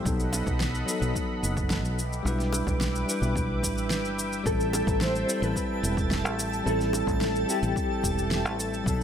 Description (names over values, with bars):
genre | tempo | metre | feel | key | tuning
sunset chillout | 109 BPM | 4/4 | straight | A minor | A4 = 440 Hz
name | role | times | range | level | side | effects
bell-like tine electric piano | accompaniment | 0.0-9.0 s | F#3 to B4 | -31 LUFS | moving between left 3 dB and right 4 dB | auto-pan, digital delay
lush unison pad | sustained chords | 0.0-9.0 s | A4 to D6 | -34 LUFS | equal | chorus
fingered electric bass | bass | 0.1-9.0 s | E1 to B1 | -30 LUFS | equal | none
electronic kick drum | drums | 0.1-9.0 s | none | -32 LUFS | equal | overdrive
electronic shaker and snare drum | drums | 0.1-9.0 s | none | -33 LUFS | equal | overdrive
bongos | percussion | 0.3-7.0 s | none | -38 LUFS | left 2 dB | none
mellow electric guitar | melody | 4.5-8.6 s | G4 to C5 | -31 LUFS | left 2 dB | tremolo, digital delay
twinkling granular texture | texture | 5.1-9.0 s | A5 | -39 LUFS | right 2 dB | built-in reverb
room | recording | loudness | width
light reverb, digital ambience | none | -25 LUFS | side -8 dB against mid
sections
0.0-9.0 A section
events
none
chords
0.1 B7; 2.0 Em7/B; 4.5 Am7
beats
| 0.05 0.60 1.16 1.71 | 2.26 2.81 3.36 3.91 | 4.46 5.01 5.56 6.11 | 6.66 7.21 7.76 8.31 | 8.86